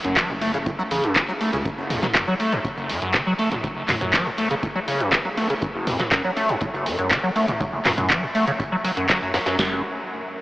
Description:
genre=acid house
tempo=121 BPM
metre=4/4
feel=straight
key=F# minor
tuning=A4 = 442 Hz
part: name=liquid acid bass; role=riff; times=0.0-9.8 s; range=F#1 to A3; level=-23 LUFS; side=equal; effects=phaser, tube saturation, analog chorus, sidechain pumping, diffuse ambient delay
part: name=saturated sub bass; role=bass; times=0.0-1.6, 9.6-9.8 s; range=F#1 to C#2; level=-33 LUFS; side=equal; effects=sidechain pumping
part: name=punchy analog drum machine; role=drums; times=0.0-9.6 s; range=handclaps, hi-hat, toms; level=-24 LUFS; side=equal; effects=none
part: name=booming analog drum machine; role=drums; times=0.2-9.7 s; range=hi-hat, kick drum, snare drum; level=-27 LUFS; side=equal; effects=none
part: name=tight metal drum kit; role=drums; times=0.2-9.6 s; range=hi-hat, snare drum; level=-31 LUFS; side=equal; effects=none
room=wet huge ambient reverb, RT60 8.2 s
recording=dreamy mix soaked in reverb, AM radio sound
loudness=-20 LUFS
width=side -18 dB against mid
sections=0.0-9.6 A section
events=none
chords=0.0 F#m; 9.6 N.C.

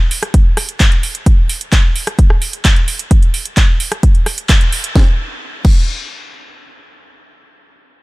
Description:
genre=EDM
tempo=130 BPM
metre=4/4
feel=straight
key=none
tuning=none
part: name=house drum kit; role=drums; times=0.1-5.7 s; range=crash cymbal, handclaps, hi-hat, rim click, snare drum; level=-19 LUFS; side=right 1 dB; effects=none
part: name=electronic kick drum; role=drums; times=0.3-5.7 s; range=none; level=-10 LUFS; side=equal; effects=none
room=little or no reverb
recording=none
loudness=-11 LUFS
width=side -22 dB against mid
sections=0.0-5.0 A section; 5.0-6.8 B section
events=drop 0.0-5.0; band accent 4.5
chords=none

